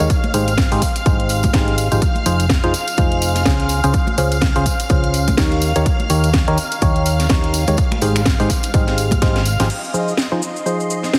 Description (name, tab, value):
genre	piano house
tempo	125 BPM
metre	4/4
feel	swing 58% on 16ths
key	F minor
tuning	A4 = 440 Hz
part	string machine, violins	sustained chords	0.0-11.2 s	Eb5 to F6	-28 LUFS	equal	ensemble chorus, sidechain pumping
part	percussive organ stab	riff	0.0-11.2 s	Db3 to Db5	-23 LUFS	equal	chorus, phaser, sidechain pumping, delay
part	hollow-body short-scale fingered electric bass	bass	0.0-9.7 s	F1 to Eb2	-22 LUFS	equal	sidechain pumping
part	house drum kit	drums	0.0-11.2 s	crash cymbal, finger snaps, hi-hat, shaker, snare drum	-25 LUFS	equal	overdrive
part	tambourine and congas	percussion	0.0-9.7 s	none	-30 LUFS	equal	none
part	electronic kick drum	drums	0.1-9.3 s	none	-20 LUFS	equal	overdrive
room	light reverb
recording	heavily compressed radio sound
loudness	-17 LUFS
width	mono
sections	0.0-9.7 A section; 9.7-11.2 B section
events	drum fill 9.2-9.7; filter sweep on synth stab 9.7-11.2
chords	0.1 Abmaj7; 2.0 Fm7; 3.7 Dbmaj7; 5.6 Eb7; 7.8 Abmaj7; 9.7 Fm7